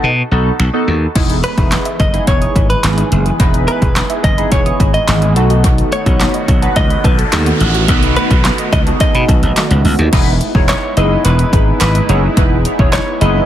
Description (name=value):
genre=dance-pop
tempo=107 BPM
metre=4/4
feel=straight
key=E major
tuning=A4 = 440 Hz
part: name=chorused polysynth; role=accompaniment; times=0.0-13.5 s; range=B3 to C#5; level=-20 LUFS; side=equal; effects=phaser, sidechain pumping, dub echo
part: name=slap bass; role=bass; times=0.0-13.4 s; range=E1 to B2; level=-14 LUFS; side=equal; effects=sidechain pumping
part: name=deep house drum kit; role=drums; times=0.6-13.3 s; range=crash cymbal, finger snaps, handclaps, hi-hat, kick drum, snare drum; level=-15 LUFS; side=equal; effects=overdrive, dub echo
part: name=filtered supersaw swell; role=sustained chords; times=1.2-13.5 s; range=D#3 to G#4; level=-22 LUFS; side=right 1 dB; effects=sidechain pumping
part: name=soft round pluck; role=arpeggios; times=1.2-10.1 s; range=D#3 to D#6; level=-25 LUFS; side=right 5 dB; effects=chorus, sidechain pumping, dub echo
part: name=direct-recorded clean electric guitar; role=melody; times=1.4-13.5 s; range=A4 to D#5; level=-20 LUFS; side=equal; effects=dub echo
part: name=noise sweep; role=sound effects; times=6.3-10.1 s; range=none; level=-23 LUFS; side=right 2 dB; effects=none
part: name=group handclap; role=percussion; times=10.7-13.1 s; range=none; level=-31 LUFS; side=right 9 dB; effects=none
room=light reverb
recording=echo-heavy mix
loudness=-10 LUFS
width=side -11 dB against mid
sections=0.0-1.2 A section; 1.2-10.1 B section; 10.1-13.5 C section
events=break 0.0-1.2; noise sweep 6.3-10.1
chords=0.0 B7; 1.2 Emaj7; 5.4 B7; 10.1 Emaj7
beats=0.03 0.59 | 1.16 1.72 2.28 2.84 | 3.40 3.96 4.52 5.08 | 5.64 6.20 6.76 7.32 | 7.88 8.45 9.01 9.57 | 10.13 10.69 11.25 11.81 | 12.37 12.93